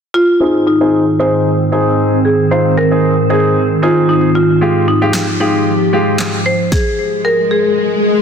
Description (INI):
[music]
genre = dance-pop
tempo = 114 BPM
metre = 4/4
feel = straight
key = Ab major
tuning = A4 = 441 Hz
[part]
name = marimba with hard mallets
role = melody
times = 0.1-8.2 s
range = Eb4 to C5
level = -14 LUFS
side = left 1 dB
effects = low-pass filter, ping-pong delay
[part]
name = clear concert grand piano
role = accompaniment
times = 0.4-6.4 s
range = Ab3 to Ab4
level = -17 LUFS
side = equal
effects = sidechain pumping, low-pass filter
[part]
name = glassy FM pad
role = sustained chords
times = 0.7-6.7 s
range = Ab2 to G4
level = -16 LUFS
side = right 1 dB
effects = ensemble chorus, built-in reverb, sidechain pumping, low-pass filter
[part]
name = house drum kit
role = drums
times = 5.1-6.8 s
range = handclaps, kick drum, snare drum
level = -19 LUFS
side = equal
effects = none
[part]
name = swell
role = sound effects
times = 7.1-8.2 s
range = none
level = -15 LUFS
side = left 4 dB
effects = none
[sound]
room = light reverb, small room ambience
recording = dense, heavily limited modern master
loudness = -10 LUFS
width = side -7 dB against mid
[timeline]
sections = 0.4-8.2 A section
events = filter sweep 0.4-8.2; swell 7.1-8.2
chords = 0.4 Ab; 4.6 Fmadd9; 6.7 N.C.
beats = | 0.41 0.93 1.46 1.98 | 2.51 3.04 3.56 4.09 | 4.62 5.14 5.67 6.19 | 6.72 7.25 7.77